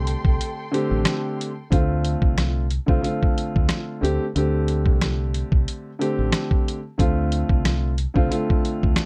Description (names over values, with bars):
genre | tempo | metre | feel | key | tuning
hip hop, boom-bap hip-hop | 91 BPM | 4/4 | swing 54% on 16ths | D minor | A4 = 438 Hz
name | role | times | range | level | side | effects
dark grand piano | accompaniment | 0.0-9.1 s | D3 to G4 | -27 LUFS | equal | high-pass filter, low-pass filter
warm studio string section | sustained chords | 0.0-1.7 s | A4 to C6 | -36 LUFS | equal | high-pass filter, low-pass filter
deep dub fingered electric bass | bass | 0.0-9.0 s | A1 to D2 | -26 LUFS | equal | none
dusty soul sampler-style drum kit | drums | 0.1-9.1 s | hi-hat, kick drum, rim click, snare drum | -23 LUFS | equal | vintage 12-bit sampler grit
finger snaps | percussion | 1.1-9.1 s | none | -37 LUFS | equal | none
room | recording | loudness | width
little or no reverb | dark, warm production | -22 LUFS | mono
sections
0.0-1.7 A section; 1.7-9.1 B section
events
break 0.4-1.7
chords
0.0 Am7; 1.7 Dm7; 4.0 Am7; 7.0 Dm7